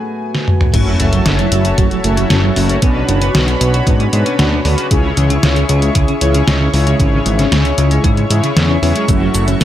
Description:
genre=synthwave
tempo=115 BPM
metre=4/4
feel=straight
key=F# minor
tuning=A4 = 444 Hz
part: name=chorused pulse-width pad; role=sustained chords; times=0.0-9.6 s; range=A3 to C#6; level=-21 LUFS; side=left 2 dB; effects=sidechain pumping
part: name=detuned 8-bit digital drum machine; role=drums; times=0.3-9.6 s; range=cabasa, crash cymbal, hi-hat, snare drum, toms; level=-17 LUFS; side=equal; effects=none
part: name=clean electric guitar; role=riff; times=0.7-9.6 s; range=C#3 to F#4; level=-21 LUFS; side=right 4 dB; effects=analog chorus, digital delay
part: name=mellow synth brass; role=stabs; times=0.7-9.6 s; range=B2 to C#5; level=-20 LUFS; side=left 2 dB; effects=chorus, digital delay
part: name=fat analog bass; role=bass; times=0.7-9.6 s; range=F#1 to G#2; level=-15 LUFS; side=equal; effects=tube saturation
part: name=electronic kick drum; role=drums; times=0.7-9.2 s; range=none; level=-15 LUFS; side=equal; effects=none
part: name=sub drop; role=sound effects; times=0.7-2.8 s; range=none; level=-22 LUFS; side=equal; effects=none
part: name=soft round pluck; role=arpeggios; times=9.1-9.6 s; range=E3 to C#4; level=-23 LUFS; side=right 4 dB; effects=chorus, digital delay
room=light reverb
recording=none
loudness=-11 LUFS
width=side -12 dB against mid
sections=0.7-9.6 A section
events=break 0.0-0.7; drum fill 0.3-0.7; impact 0.7-2.8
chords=0.0 F#madd9; 0.7 F#m7; 2.8 Bmadd9; 4.9 C#m; 9.1 F#m7

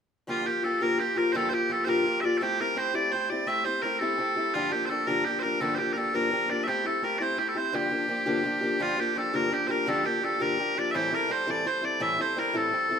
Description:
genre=celtic folk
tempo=112 BPM (dotted quarters)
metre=6/8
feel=straight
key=G dorian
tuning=A4 = 440 Hz
part: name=loud bright bagpipes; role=melody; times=0.3-13.0 s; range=F4 to E5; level=-26 LUFS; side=right 1 dB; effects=none
part: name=picked steel-string acoustic guitar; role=accompaniment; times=0.3-13.0 s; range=G2 to A4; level=-29 LUFS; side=left 2 dB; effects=none
room=moderate recital hall reverb, RT60 1.5 s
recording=minimal, uncompressed stereo recording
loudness=-24 LUFS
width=side -6 dB against mid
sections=0.3-8.8 A section; 8.8-13.0 A section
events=none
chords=0.3 Gm7; 2.4 Am7; 4.5 Gm7; 6.7 Am7; 7.7 Gm7; 10.9 Am7

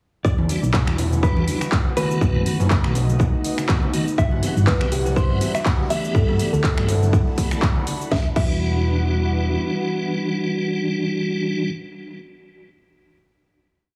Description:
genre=deep house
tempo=122 BPM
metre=4/4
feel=swing 55% on 16ths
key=E minor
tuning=A4 = 440 Hz
part: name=hollow-body jazz guitar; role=melody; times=0.2-11.7 s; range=B4 to F#5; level=-30 LUFS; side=equal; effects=tape echo
part: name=warbly tape-like pad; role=sustained chords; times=0.7-11.4 s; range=G3 to F#4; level=-35 LUFS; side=equal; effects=none
part: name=hollow-body short-scale fingered electric bass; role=bass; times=0.2-9.6 s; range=E1 to G2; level=-24 LUFS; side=equal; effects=sidechain pumping
part: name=electronic kick drum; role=drums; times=0.2-8.5 s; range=none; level=-22 LUFS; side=equal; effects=overdrive
part: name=airy breathy pad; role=texture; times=0.2-11.6 s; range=G3 to B5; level=-36 LUFS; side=equal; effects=chorus, sidechain pumping
part: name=house drum kit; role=drums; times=0.3-8.5 s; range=crash cymbal, finger snaps, handclaps, hi-hat, shaker, snare drum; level=-31 LUFS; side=equal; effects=overdrive
part: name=congas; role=percussion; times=0.4-8.0 s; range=none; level=-32 LUFS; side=equal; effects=none
part: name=tonewheel organ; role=stabs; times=0.5-11.7 s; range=D#3 to A4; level=-28 LUFS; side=equal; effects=chorus vibrato, fast rotary speaker, sidechain pumping, analog delay
part: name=string machine, violins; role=texture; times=4.2-8.1 s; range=F#4 to F#5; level=-40 LUFS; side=equal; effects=ensemble chorus
part: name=thumb-piano-like synth pluck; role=melody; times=4.7-7.0 s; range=G4 to B4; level=-30 LUFS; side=equal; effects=chorus, tape echo
room=little or no reverb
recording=heavily compressed radio sound, multiband compression, cassette tape, studio ambience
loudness=-21 LUFS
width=mono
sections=0.2-8.1 drop; 8.1-12.1 final chord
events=drop 0.2-8.1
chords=0.2 Em9; 2.2 B7; 4.2 Cmaj7; 6.1 G69; 8.1 Em9

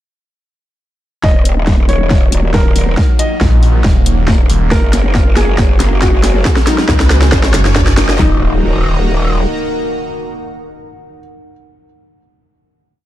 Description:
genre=heavy wobble dubstep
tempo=138 BPM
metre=4/4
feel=half-time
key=Eb minor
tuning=A4 = 439 Hz
part: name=felt-muted upright piano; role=melody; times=1.2-11.2 s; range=Eb4 to Eb5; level=-21 LUFS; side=left 1 dB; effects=low-pass filter, ping-pong delay
part: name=supersaw pad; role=sustained chords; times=1.2-11.2 s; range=Eb3 to Bb5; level=-23 LUFS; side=equal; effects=phaser, sidechain pumping
part: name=growl bass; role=bass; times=1.2-9.5 s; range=Eb1 to Ab1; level=-14 LUFS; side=equal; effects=chorus, overdrive
part: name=dubstep drum kit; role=drums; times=1.2-8.3 s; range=handclaps, kick drum, snare drum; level=-13 LUFS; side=equal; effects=distortion, studio ambience
part: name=dubstep drum kit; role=drums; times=1.2-8.2 s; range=hi-hat, snare drum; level=-17 LUFS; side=equal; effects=studio ambience
part: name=riser and impact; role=sound effects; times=2.8-11.2 s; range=none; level=-23 LUFS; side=equal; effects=none
part: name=warbly tape-like pad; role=texture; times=1.6-11.3 s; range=Eb4 to Ab5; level=-25 LUFS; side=left 1 dB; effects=chorus, built-in reverb, sidechain pumping
part: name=snarling distorted saw bass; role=bass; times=3.4-8.0 s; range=Eb1 to Db2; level=-12 LUFS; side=equal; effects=distortion, overdrive
room=little or no reverb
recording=dark, warm production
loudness=-9 LUFS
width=side -13 dB against mid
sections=1.2-8.2 build; 8.2-11.7 final chord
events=build-up 1.2-8.2; drum fill 1.2-8.2; filter sweep on felt piano 1.2-8.2; riser 2.8-8.2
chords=1.2 Ebm; 4.7 Gbadd9; 8.2 Ebm

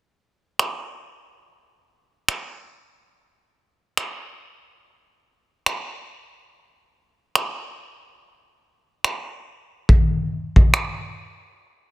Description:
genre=R&B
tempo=71 BPM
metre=4/4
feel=swing 58% on 16ths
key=none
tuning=none
part: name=vintage brush drum kit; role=drums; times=0.6-11.0 s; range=finger snaps, kick drum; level=-18 LUFS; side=equal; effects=soft clipping on snare
room=little or no reverb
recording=dense, heavily limited modern master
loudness=-20 LUFS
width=side -19 dB against mid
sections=0.0-11.9 A section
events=break 11.6-11.9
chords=none

